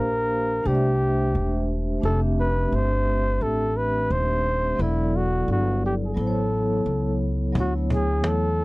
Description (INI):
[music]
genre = hip hop, jazz-hop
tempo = 87 BPM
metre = 4/4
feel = swing 63% on 16ths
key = unclear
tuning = A4 = 435 Hz
[part]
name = mellow flugelhorn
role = melody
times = 0.0-8.6 s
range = E4 to C5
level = -25 LUFS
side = equal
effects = none
[part]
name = vibraphone with medium mallets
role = accompaniment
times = 0.0-8.6 s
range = F#3 to F5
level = -27 LUFS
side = equal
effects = none
[part]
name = upright bass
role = bass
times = 0.0-8.6 s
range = Eb1 to E2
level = -24 LUFS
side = equal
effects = none
[part]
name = cajon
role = drums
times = 7.6-8.6 s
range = none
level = -29 LUFS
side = equal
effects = none
[sound]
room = little or no reverb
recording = dry, gritty hardware recording, transformer saturation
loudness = -21 LUFS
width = side -22 dB against mid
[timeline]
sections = 0.0-8.6 A section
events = none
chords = 0.0 Gm7; 0.7 C69; 2.0 Fmaj9; 4.8 Em7; 6.2 A69; 7.5 Dmaj9